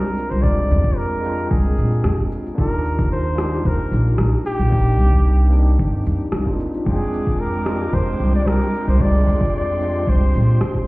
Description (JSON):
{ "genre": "sunset chillout", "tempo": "112 BPM", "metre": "4/4", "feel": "straight", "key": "F dorian", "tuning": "A4 = 440 Hz", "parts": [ { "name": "warm flugelhorn", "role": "melody", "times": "0.0-10.9 s", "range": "G4 to D5", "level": "-25 LUFS", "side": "equal", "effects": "digital delay" }, { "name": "overdriven tine electric piano", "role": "accompaniment", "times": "0.0-10.9 s", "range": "Ab3 to G5", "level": "-25 LUFS", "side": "equal", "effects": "fast tremolo, auto-pan, low-pass filter" }, { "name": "electronic shaker and rim click", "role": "drums", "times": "0.2-10.7 s", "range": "none", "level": "-27 LUFS", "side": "equal", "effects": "overdrive" }, { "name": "upright bass", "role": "bass", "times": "0.3-10.7 s", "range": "G1 to Bb2", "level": "-18 LUFS", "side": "equal", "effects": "none" }, { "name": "electronic kick drum", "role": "drums", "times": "0.4-10.9 s", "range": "none", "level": "-21 LUFS", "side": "equal", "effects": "overdrive" }, { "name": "clear symphonic string section", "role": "sustained chords", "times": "6.9-10.9 s", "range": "Ab3 to D6", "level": "-32 LUFS", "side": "equal", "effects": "none" } ], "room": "little or no reverb", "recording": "heard muffled through a wall, stone room reverb, EQ", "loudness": "-16 LUFS", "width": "side -21 dB against mid", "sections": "0.0-10.9 A section", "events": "none", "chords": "0.0 Fm69; 2.6 Ebmaj7; 4.7 Cm7; 6.9 Fm69", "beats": "| 0.43 0.97 1.50 2.04 | 2.58 3.11 3.65 4.18 | 4.72 5.25 5.79 6.33 | 6.86 7.40 7.93 8.47 | 9.01 9.54 10.08 10.61" }